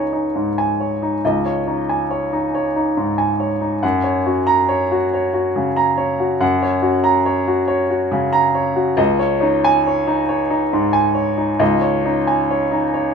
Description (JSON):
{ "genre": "neoclassical minimalist piano", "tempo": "46 BPM (dotted quarters)", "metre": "6/8", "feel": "rubato", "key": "unclear", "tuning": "A4 = 440 Hz", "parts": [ { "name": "warm grand piano", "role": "solo", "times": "0.0-13.1 s", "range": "Db2 to Bb5", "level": "-16 LUFS", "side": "equal", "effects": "none" } ], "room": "moderate small room reverb, RT60 0.5 s", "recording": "minimal, uncompressed stereo recording", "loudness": "-16 LUFS", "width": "side -6 dB against mid", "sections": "0.0-13.1 A section", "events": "none", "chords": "0.0 Dbsus2; 3.8 Gb; 9.0 Dbsus2" }